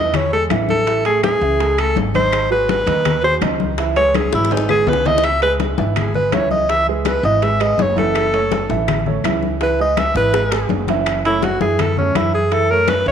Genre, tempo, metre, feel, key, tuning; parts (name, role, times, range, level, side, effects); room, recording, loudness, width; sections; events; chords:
Afro-Cuban jazz; 165 BPM; 4/4; straight; C# minor; A4 = 441 Hz
clear alto saxophone; melody; 0.0-13.1 s; C#4 to E5; -17 LUFS; equal
warm upright piano; accompaniment; 0.0-13.1 s; D#3 to E5; -22 LUFS; right 11 dB
upright bass; bass; 0.0-13.1 s; F#1 to F#2; -22 LUFS; equal
bongos; percussion; 0.1-13.1 s; -28 LUFS; left 14 dB
claves; percussion; 0.1-13.1 s; -31 LUFS; left 13 dB
congas; percussion; 0.1-13.1 s; -23 LUFS; left 10 dB
timbales; percussion; 0.1-13.1 s; -28 LUFS; right 11 dB
moderate echo chamber reverb, RT60 1.8 s, studio reverb; 1960s-style stereo with parts hard left and right; -14 LUFS; side -8 dB against mid
0.0-5.2 A section; 5.2-13.1 A section
alto saxophone solo 0.0-13.1; drum fill 4.1-5.2, 10.2-11.1
0.0 Amaj7; 2.3 G#m7; 3.8 C#m7; 8.2 F#m7; 9.6 C#m7; 11.1 F#m7